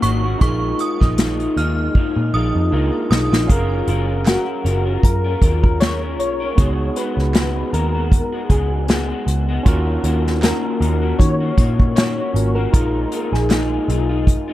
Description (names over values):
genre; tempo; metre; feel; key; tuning
indie pop, bedroom pop; 78 BPM; 4/4; swing 55% on 16ths; F# major; A4 = 440 Hz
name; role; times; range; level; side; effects
synth chime; second line; 0.0-3.3 s; C#6 to E#6; -26 LUFS; right 3 dB; ensemble chorus, analog chorus, tape echo
barky tine electric piano; accompaniment; 0.0-14.5 s; B3 to E#5; -26 LUFS; right 4 dB; overdrive, cassette tape, low-pass filter
electric guitar through a small old amp; accompaniment; 0.0-14.5 s; A#2 to A#4; -24 LUFS; left 4 dB; analog chorus, warbly pitch drift, low-pass filter
vintage muted picked electric bass; bass; 0.0-14.4 s; F#1 to D#3; -20 LUFS; equal; none
unplugged drum kit; drums; 0.0-14.5 s; hi-hat, kick drum, snare drum; -17 LUFS; equal; none
soft electric-piano-like synth keys; melody; 4.3-14.5 s; F#4 to C#5; -25 LUFS; left 1 dB; ensemble chorus, tape echo
group handclap; percussion; 4.3-13.7 s; none; -35 LUFS; right 6 dB; none
room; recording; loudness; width
studio reverb; dark, warm production; -15 LUFS; side -14 dB against mid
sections
0.0-3.5 A section; 3.5-14.5 B section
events
drum fill 2.0-3.5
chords
0.4 A#7sus4; 3.5 F#maj7; 6.6 C#7sus4; 9.7 D#m7; 12.7 A#7sus4